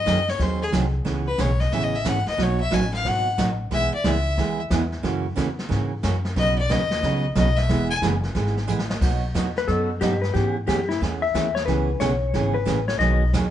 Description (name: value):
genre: country, western swing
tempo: 181 BPM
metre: 4/4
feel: swing 64% on 8ths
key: E major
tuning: A4 = 438 Hz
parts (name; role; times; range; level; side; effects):
- clear fiddle; melody; 0.0-8.0 s; G#4 to G#5; -25 LUFS; left 3 dB; none
- upright bass; bass; 0.0-13.5 s; E1 to G#2; -25 LUFS; equal; none
- picked steel-string acoustic guitar; accompaniment; 0.1-13.5 s; B2 to B4; -25 LUFS; right 4 dB; none
- vintage brush drum kit; drums; 0.1-13.5 s; brushed snare drum, crash cymbal, hi-hat, kick drum, snare drum; -29 LUFS; equal; none
- clean lap steel guitar; second line; 9.6-13.3 s; E4 to E5; -24 LUFS; left 6 dB; none
room: moderate large studio reverb, RT60 0.8 s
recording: band playing live in one room, nothing above 10.3 kHz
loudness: -20 LUFS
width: side -11 dB against mid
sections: 0.0-9.0 A section; 9.0-13.5 A section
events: fiddle solo 0.0-9.0; drum fill 8.7-9.0; electric slide guitar solo 9.0-13.5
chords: 0.0 G#7; 1.1 C#m7; 2.4 B; 3.7 E; 5.0 F#7; 6.4 Badd9; 7.7 E; 9.0 B; 10.3 E6; 11.7 C#m7; 13.0 B6